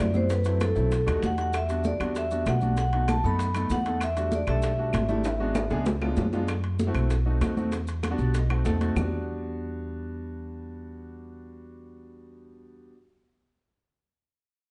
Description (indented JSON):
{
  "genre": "Afro-Cuban jazz",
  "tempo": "194 BPM",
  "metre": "4/4",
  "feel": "straight",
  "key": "E minor",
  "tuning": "A4 = 440 Hz",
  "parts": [
    { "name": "vibraphone with medium mallets", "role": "melody", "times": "0.0-5.8 s", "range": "A4 to B5", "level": "-32 LUFS", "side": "equal", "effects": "none" },
    { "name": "clear concert grand piano", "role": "accompaniment", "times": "0.0-12.9 s", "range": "F#3 to A5", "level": "-35 LUFS", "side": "equal", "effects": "none" },
    { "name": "upright bass", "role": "bass", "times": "0.0-12.9 s", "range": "G#1 to F#2", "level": "-30 LUFS", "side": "equal", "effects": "none" },
    { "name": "congas", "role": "percussion", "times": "0.0-9.0 s", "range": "none", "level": "-35 LUFS", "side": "equal", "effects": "none" },
    { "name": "bongos", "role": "percussion", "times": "0.1-9.0 s", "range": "none", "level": "-41 LUFS", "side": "equal", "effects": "none" },
    { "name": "maracas", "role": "percussion", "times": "0.1-9.0 s", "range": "none", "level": "-53 LUFS", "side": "equal", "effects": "none" },
    { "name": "timbales", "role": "percussion", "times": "0.3-9.0 s", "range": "none", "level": "-38 LUFS", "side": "equal", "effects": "none" },
    { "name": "claves", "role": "percussion", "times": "0.6-9.0 s", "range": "none", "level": "-44 LUFS", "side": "equal", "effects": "none" }
  ],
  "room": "light reverb",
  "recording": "dark, warm production, nothing above 10.4 kHz",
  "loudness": "-27 LUFS",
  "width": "mono",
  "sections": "0.0-6.5 A section; 6.5-9.0 B section; 9.0-11.5 C section",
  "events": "drum fill 5.3-6.5; grand piano fill 8.0-9.0",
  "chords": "0.3 F#m7b5; 0.9 B7b13; 1.5 Em9; 2.8 B7; 4.0 Em11; 5.3 G#m7b5; 5.9 C#7b9; 6.5 F#m7b5; 7.1 B7b9; 7.7 Em9; 8.3 B7b9; 9.0 Em9"
}